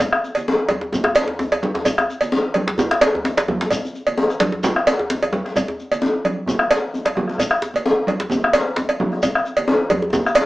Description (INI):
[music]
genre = west african traditional, West African drum ensemble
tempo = 130 BPM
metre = 4/4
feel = swing 54% on 16ths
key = none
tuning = none
[part]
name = congas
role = percussion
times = 0.0-10.4 s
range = none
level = -24 LUFS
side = right 1 dB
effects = none
[part]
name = cowbell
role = percussion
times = 0.0-10.5 s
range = none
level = -19 LUFS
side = right 1 dB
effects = none
[part]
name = djembe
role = percussion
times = 0.0-10.5 s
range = none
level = -22 LUFS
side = left 1 dB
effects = none
[part]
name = djembe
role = percussion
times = 0.0-10.5 s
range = none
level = -24 LUFS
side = equal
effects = none
[part]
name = shekere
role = percussion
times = 0.0-10.3 s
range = none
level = -32 LUFS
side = left 1 dB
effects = none
[part]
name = bombo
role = percussion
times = 0.1-10.4 s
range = none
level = -22 LUFS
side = left 1 dB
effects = none
[sound]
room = wet studio reverb, RT60 0.6 s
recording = band playing live in one room, small speaker sound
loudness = -17 LUFS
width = side -17 dB against mid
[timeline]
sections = 0.0-10.5 A section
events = drum fill 10.1-10.5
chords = none